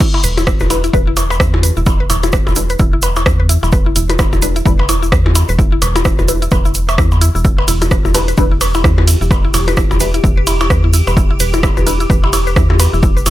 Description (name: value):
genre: minimal techno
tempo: 129 BPM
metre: 4/4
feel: swing 59% on 16ths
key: E minor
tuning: A4 = 440 Hz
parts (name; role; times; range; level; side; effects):
- mallet-like synth pluck; riff; 0.0-13.3 s; E4 to E5; -21 LUFS; left 1 dB; chorus, phaser, sidechain pumping, ping-pong delay
- electronic kick drum; drums; 0.0-13.1 s; none; -14 LUFS; equal; overdrive
- punchy analog drum machine; drums; 0.0-13.3 s; crash cymbal, hi-hat, ride cymbal, rim click; -20 LUFS; right 2 dB; overdrive
- egg shaker; percussion; 0.0-13.3 s; none; -24 LUFS; right 2 dB; none
- percussion blips; percussion; 0.1-13.3 s; none; -21 LUFS; left 1 dB; overdrive
- rubbery square bass; bass; 0.2-13.3 s; E1 to E2; -15 LUFS; equal; tube saturation, sidechain pumping
- filtered dub chord stab; stabs; 0.7-12.0 s; G3 to B4; -22 LUFS; left 3 dB; phaser, ensemble chorus, tape echo
- swarming drone; texture; 8.3-13.3 s; G4; -25 LUFS; left 1 dB; built-in reverb, sidechain pumping
room: little or no reverb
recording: none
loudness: -10 LUFS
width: side -14 dB against mid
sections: 0.0-13.3 A section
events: drop 0.0-13.3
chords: 0.0 Em